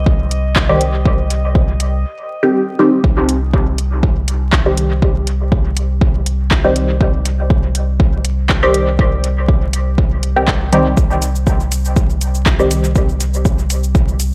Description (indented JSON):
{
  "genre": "dub techno",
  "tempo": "121 BPM",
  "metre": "4/4",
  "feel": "swing 54% on 16ths",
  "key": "C minor",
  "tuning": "A4 = 439 Hz",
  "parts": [
    { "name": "warm sub bass", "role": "bass", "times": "0.0-14.3 s", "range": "C2", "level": "-20 LUFS", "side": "equal", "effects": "sidechain pumping" },
    { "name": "drifting glass-harmonics texture", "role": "texture", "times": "0.0-2.0 s", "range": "Eb5", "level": "-32 LUFS", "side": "equal", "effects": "chorus, built-in reverb, sidechain pumping" },
    { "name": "electronic kick drum", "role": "drums", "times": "0.1-14.1 s", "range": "none", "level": "-17 LUFS", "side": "equal", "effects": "overdrive" },
    { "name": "deep house drum kit", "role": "drums", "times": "0.3-14.3 s", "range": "cabasa, handclaps, hi-hat", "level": "-24 LUFS", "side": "equal", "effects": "overdrive, dub echo" },
    { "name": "filtered dub chord stab", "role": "stabs", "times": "0.7-12.9 s", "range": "Eb3 to G4", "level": "-20 LUFS", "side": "equal", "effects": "phaser, sidechain pumping, dub echo" }
  ],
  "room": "light reverb, digital ambience",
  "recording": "vinyl crackle",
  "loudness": "-15 LUFS",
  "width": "mono",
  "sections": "0.0-3.0 A section; 3.0-14.3 A section",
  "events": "none",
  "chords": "0.0 Cm",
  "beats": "0.06 0.56 | 1.06 1.55 2.05 2.54 | 3.04 3.54 4.03 4.53 | 5.02 5.52 6.01 6.51 | 7.01 7.50 8.00 8.49 | 8.99 9.49 9.98 10.48 | 10.97 11.47 11.96 12.46 | 12.96 13.45 13.95"
}